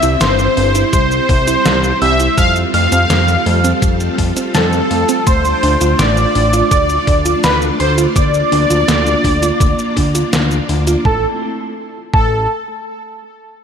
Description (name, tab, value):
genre	synthwave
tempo	83 BPM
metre	4/4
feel	straight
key	A minor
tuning	A4 = 440 Hz
part	soft supersaw	melody	0.0-12.5 s	A4 to F5	-17 LUFS	left 1 dB	phaser, ping-pong delay
part	FM electric piano with soft pad layer	second line	0.0-12.5 s	A5 to F6	-22 LUFS	right 2 dB	chorus, phaser, cassette tape, digital delay
part	string machine, full ensemble	sustained chords	0.0-11.4 s	G3 to D5	-20 LUFS	equal	ensemble chorus, vintage 12-bit sampler grit, sidechain pumping
part	soft round pluck	arpeggios	0.0-12.5 s	G3 to F4	-21 LUFS	right 5 dB	chorus, digital delay
part	fat analog bass	bass	0.0-12.5 s	G1 to F2	-17 LUFS	equal	sidechain pumping
part	detuned 8-bit digital drum machine	drums	0.0-11.0 s	hi-hat, shaker, snare drum	-20 LUFS	left 1 dB	gated reverb
part	electronic kick drum	drums	0.9-12.3 s	none	-16 LUFS	equal	none
room	light reverb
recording	none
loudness	-11 LUFS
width	side -7 dB against mid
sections	0.0-11.1 A section; 11.1-13.6 B section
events	none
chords	0.0 C; 2.4 Fadd9; 5.3 Dm; 8.2 Bb/D; 11.1 Am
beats	0.21 0.93 1.65 | 2.38 3.10 3.82 4.54 | 5.27 5.99 6.71 7.44 | 8.16 8.88 9.61 10.33 | 11.05 11.77